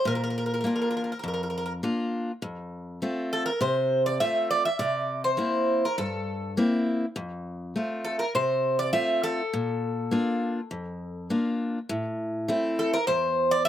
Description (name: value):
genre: greek folk, Greek bouzouki band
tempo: 101 BPM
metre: 4/4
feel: straight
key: unclear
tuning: A4 = 442 Hz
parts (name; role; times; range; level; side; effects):
- Greek bouzouki; melody; 0.0-13.7 s; A4 to E5; -25 LUFS; right 1 dB; slapback echo
- picked steel-string acoustic guitar; accompaniment; 0.1-13.7 s; E2 to F4; -28 LUFS; left 1 dB; none
room: little or no reverb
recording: recorded outdoors, with no room sound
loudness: -25 LUFS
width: side -11 dB against mid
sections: 0.0-11.9 A section; 11.9-13.7 A section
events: none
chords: 0.1 Bb; 2.4 F; 4.8 C7; 7.2 F; 9.5 Bb; 11.9 Am